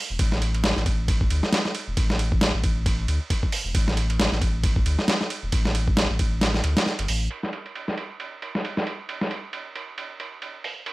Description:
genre	breakbeat, breaks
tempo	135 BPM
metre	4/4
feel	swing 57% on 16ths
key	unclear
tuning	A4 = 441 Hz
part	saturated sub bass	bass	0.1-7.3 s	E1 to D2	-24 LUFS	equal	none
part	dusty soul sampler-style drum kit	drums	0.2-10.9 s	hi-hat, kick drum, ride cymbal, snare drum	-24 LUFS	equal	overdrive, low-pass filter on cymbals, small room ambience, low-pass filter on kick, low-pass filter on hats, low-pass filter on snare
room	little or no reverb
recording	none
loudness	-22 LUFS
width	side -20 dB against mid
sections	0.0-7.3 A section; 7.3-10.9 B section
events	kick drops out 6.4-7.3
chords	none

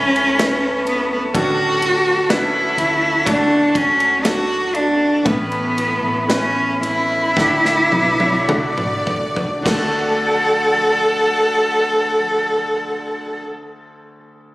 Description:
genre	pop ballad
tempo	50-63 BPM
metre	4/4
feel	straight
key	D major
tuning	A4 = 443 Hz
part	rich cello	melody	0.0-13.4 s	B3 to A4	-16 LUFS	equal	none
part	clear concert grand piano	accompaniment	0.0-14.5 s	D2 to C#5	-26 LUFS	left 1 dB	none
part	small flute group	sustained chords	0.0-13.4 s	A4 to D6	-27 LUFS	equal	none
part	fingerpicked steel-string acoustic guitar	arpeggios	0.0-13.5 s	D3 to B4	-26 LUFS	left 1 dB	ping-pong delay
part	hollow-body short-scale fingered electric bass	bass	0.0-13.4 s	A1 to D2	-31 LUFS	equal	none
part	modern studio drum kit	drums	0.2-9.9 s	crash cymbal, kick drum, ride cymbal, snare drum, toms	-25 LUFS	equal	none
part	bright symphonic violin section	second line	7.9-13.4 s	B4 to F#5	-29 LUFS	equal	none
room	light reverb, small room ambience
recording	recorded on a phone in the room, studio reverb, lossy compression artefacts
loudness	-15 LUFS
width	side -19 dB against mid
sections	0.0-9.7 A section; 9.7-14.5 B section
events	slowing down 1.3-9.7; drum fill 7.4-9.7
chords	0.0 Aadd9; 1.3 Dmaj7; 5.3 Aadd9; 7.4 D

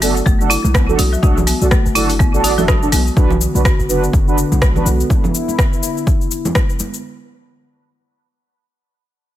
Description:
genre	afro house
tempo	124 BPM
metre	4/4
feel	swing 58% on 16ths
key	B minor pentatonic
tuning	A4 = 440 Hz
part	folk marimba with hard mallets	arpeggios	0.0-3.0 s	F#3 to F#4	-20 LUFS	left 1 dB	sidechain pumping, dub echo
part	mellow synth brass	stabs	0.0-4.9 s	D4 to D5	-20 LUFS	right 3 dB	chorus, sidechain pumping, dub echo
part	warm 808-style bass	bass	0.0-5.0 s	F#1 to B1	-19 LUFS	equal	sidechain pumping
part	deep house drum kit	drums	0.0-7.0 s	cabasa, hi-hat, rim click	-21 LUFS	left 1 dB	overdrive
part	electronic kick drum	drums	0.3-6.7 s	none	-15 LUFS	equal	overdrive
part	congas	percussion	0.6-6.9 s	none	-23 LUFS	right 2 dB	none
part	warm analog pad	sustained chords	3.2-7.0 s	D3 to F#4	-22 LUFS	left 1 dB	chorus, sidechain pumping
room	little or no reverb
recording	none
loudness	-12 LUFS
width	side -13 dB against mid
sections	0.0-3.2 A section; 3.2-7.0 B section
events	filter sweep on marimba 0.0-3.2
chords	0.0 Bm

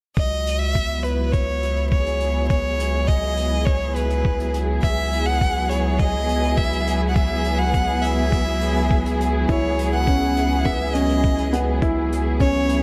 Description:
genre	piano and strings electronica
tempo	103 BPM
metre	4/4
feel	straight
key	C# minor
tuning	A4 = 440 Hz
part	clear violin	melody	0.2-12.8 s	B4 to F#5	-27 LUFS	equal	none
part	muted studio string section	sustained chords	0.2-12.8 s	F#3 to G#4	-28 LUFS	equal	sidechain pumping
part	round analog bass	bass	0.2-12.8 s	C#2	-26 LUFS	equal	sidechain pumping
part	electronic kick drum	drums	0.2-12.5 s	none	-24 LUFS	equal	none
part	hi-hat	drums	0.2-12.8 s	none	-43 LUFS	equal	none
part	warm upright piano	riff	9.5-12.8 s	B3 to E4	-25 LUFS	equal	tape echo
room	moderate recital hall reverb, RT60 1.4 s, studio reverb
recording	none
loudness	-21 LUFS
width	mono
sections	0.2-12.8 A section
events	none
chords	0.2 C#m11

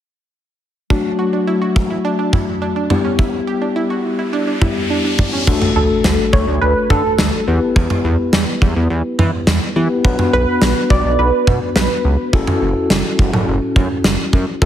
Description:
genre	synth-pop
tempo	105 BPM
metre	4/4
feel	straight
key	D major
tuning	A4 = 440 Hz
part	tine electric piano	accompaniment	0.9-14.7 s	F#3 to B4	-19 LUFS	left 4 dB	medium tremolo
part	analog pluck	arpeggios	0.9-5.4 s	C#4 to G4	-22 LUFS	right 4 dB	chorus, analog delay
part	gated 80s drum kit	drums	0.9-14.7 s	crash cymbal, kick drum, snare drum, toms	-16 LUFS	right 1 dB	none
part	riser and impact	sound effects	3.9-7.8 s	none	-26 LUFS	equal	none
part	chorused synth bass	bass	5.5-14.7 s	F#1 to E3	-18 LUFS	equal	none
part	funky polysynth comp	melody	5.8-12.2 s	A4 to D5	-19 LUFS	right 2 dB	chorus, phaser, analog delay
room	moderate lush hall reverb, RT60 1.9 s, small room ambience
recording	heavily compressed radio sound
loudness	-14 LUFS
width	side -10 dB against mid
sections	0.9-5.5 A section; 5.5-14.7 B section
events	riser 3.9-5.5; impact 5.5-7.8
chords	0.9 D; 2.9 Em; 5.5 D; 7.5 Em; 10.0 Bm; 12.3 F#m7

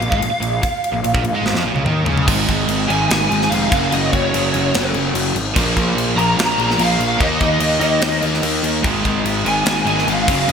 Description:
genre	hard rock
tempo	146 BPM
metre	4/4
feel	straight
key	unclear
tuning	A4 = 440 Hz
part	lead guitar through a small cranked amp	melody	0.0-10.5 s	Db5 to Bb5	-20 LUFS	equal	overdrive, ensemble chorus, digital delay
part	cranked stack guitar	riff	0.0-10.5 s	Gb2 to Eb4	-22 LUFS	right 9 dB	overdrive
part	overdriven semi-hollow guitar	riff	0.0-10.5 s	Gb2 to Eb4	-23 LUFS	left 8 dB	lush chorus
part	fuzz picked electric bass	bass	0.0-10.5 s	F1 to Ab2	-22 LUFS	equal	overdrive
part	tight metal drum kit	drums	0.0-10.5 s	crash cymbal, kick drum, ride cymbal, snare drum, toms	-21 LUFS	left 1 dB	gated reverb
part	distorted electric guitar	riff	8.8-10.5 s	Gb2 to Ab3	-25 LUFS	right 1 dB	distortion
room	moderate lush hall reverb, RT60 1.9 s, small room ambience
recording	bright 1980s-style digital production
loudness	-15 LUFS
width	side -6 dB against mid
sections	0.0-2.3 A section; 2.3-10.5 B section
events	drum fill 1.5-2.3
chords	0.0 Bbm; 2.3 Ab5; 3.7 Gb5; 5.6 Bb5; 7.2 Eb5; 8.8 Ab5

